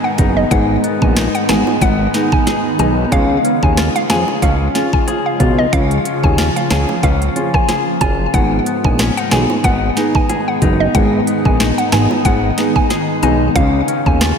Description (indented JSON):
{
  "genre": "dancehall",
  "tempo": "92 BPM",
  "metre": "4/4",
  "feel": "swing 56% on 16ths",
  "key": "G# dorian",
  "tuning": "A4 = 440 Hz",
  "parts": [
    { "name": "hollow square pluck", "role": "melody", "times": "0.0-14.2 s", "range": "D#5 to G#5", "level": "-20 LUFS", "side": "left 1 dB", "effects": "chorus, ping-pong delay" },
    { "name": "granular cloud pad", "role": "sustained chords", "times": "0.0-14.4 s", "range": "C#3 to E#4", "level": "-21 LUFS", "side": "right 1 dB", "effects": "built-in reverb, sidechain pumping" },
    { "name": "semi-hollow electric guitar", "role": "arpeggios", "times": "0.0-14.4 s", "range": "G#2 to G#4", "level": "-23 LUFS", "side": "left 6 dB", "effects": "ping-pong delay" },
    { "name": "downlifter", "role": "sound effects", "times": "0.0-3.1 s", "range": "none", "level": "-37 LUFS", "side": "equal", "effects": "none" },
    { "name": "dark baby grand piano", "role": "accompaniment", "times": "0.2-14.3 s", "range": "B3 to G#4", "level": "-21 LUFS", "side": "right 2 dB", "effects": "sidechain pumping" },
    { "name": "fat analog bass", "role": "bass", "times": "0.2-14.3 s", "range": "F#1 to E#2", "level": "-17 LUFS", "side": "equal", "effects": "none" },
    { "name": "island pop drum kit", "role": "drums", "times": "0.2-14.4 s", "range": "hi-hat, kick drum, rim click, snare drum", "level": "-17 LUFS", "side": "equal", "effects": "overdrive" },
    { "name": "bongos", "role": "percussion", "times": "0.2-13.7 s", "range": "none", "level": "-28 LUFS", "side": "right 4 dB", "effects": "none" }
  ],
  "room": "moderate lush hall reverb, RT60 2.8 s",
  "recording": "dreamy mix soaked in reverb",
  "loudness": "-12 LUFS",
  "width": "side -6 dB against mid",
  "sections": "0.0-14.4 A section",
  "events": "none",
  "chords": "0.0 G#m; 3.1 C#; 8.3 G#m; 13.6 C#",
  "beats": "| 0.51 1.16 1.82 2.47 | 3.12 3.77 4.42 5.08 | 5.73 6.38 7.03 7.69 | 8.34 8.99 9.64 10.29 | 10.95 11.60 12.25 12.90 | 13.56 14.21"
}